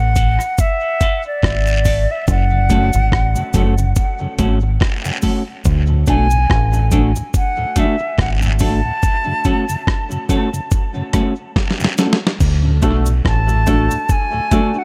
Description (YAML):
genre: dub reggae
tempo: 71 BPM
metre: 4/4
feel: swing 57% on 16ths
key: unclear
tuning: A4 = 439 Hz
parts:
  - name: silver concert flute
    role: melody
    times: 0.0-14.8 s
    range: D5 to A5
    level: -24 LUFS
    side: equal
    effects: dub echo
  - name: mellow tonewheel organ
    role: accompaniment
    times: 0.0-14.6 s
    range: D2 to D4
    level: -28 LUFS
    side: equal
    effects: chorus vibrato, stopped rotary speaker, high-pass filter, dub echo
  - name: deep dub fingered electric bass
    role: bass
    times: 0.0-13.9 s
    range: F#1 to D2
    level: -18 LUFS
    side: equal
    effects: none
  - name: semi-hollow electric guitar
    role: accompaniment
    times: 0.2-14.8 s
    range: A3 to A4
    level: -26 LUFS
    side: equal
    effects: high-pass filter, dub echo
  - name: dusty soul sampler-style drum kit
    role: drums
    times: 0.2-14.7 s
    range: crash cymbal, hi-hat, kick drum, rim click, snare drum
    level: -20 LUFS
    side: equal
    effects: none
  - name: cabasa and guiro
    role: percussion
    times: 0.2-14.7 s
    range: none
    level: -32 LUFS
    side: equal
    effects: high-pass filter on perc, dub echo
  - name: dark upright piano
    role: stabs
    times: 12.8-14.8 s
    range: A3 to A4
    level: -25 LUFS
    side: equal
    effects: high-pass filter, dub echo
room: little or no reverb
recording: echo-heavy mix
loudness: -16 LUFS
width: mono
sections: 0.0-14.8 A section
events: break 0.0-12.4; drum fill 11.6-12.4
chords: 0.0 D; 2.3 F#m; 5.7 D; 9.0 F#m; 12.4 D